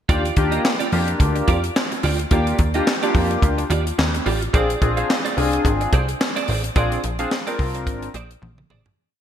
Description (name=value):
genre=early-eighties boogie funk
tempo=108 BPM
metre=4/4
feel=swing 56% on 16ths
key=Eb major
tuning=A4 = 441 Hz
part: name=chorused polysynth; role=accompaniment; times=0.1-8.1 s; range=Bb3 to Bb4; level=-23 LUFS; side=left 2 dB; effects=none
part: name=clean electric guitar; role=riff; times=0.1-8.9 s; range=F4 to F5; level=-27 LUFS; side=right 6 dB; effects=ensemble chorus
part: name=plucky analog bass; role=bass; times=0.1-8.9 s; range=Ab1 to F2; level=-22 LUFS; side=equal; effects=none
part: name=tight funk drum kit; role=drums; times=0.1-9.0 s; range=handclaps, hi-hat, kick drum, snare drum, toms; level=-21 LUFS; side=equal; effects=gated reverb
room=light reverb, small room ambience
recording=bright 1980s-style digital production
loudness=-18 LUFS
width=side -9 dB against mid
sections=0.1-9.0 verse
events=fade-out 6.8-9.0; drum fill 8.4-9.0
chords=0.1 Ebmaj9; 4.5 Bb9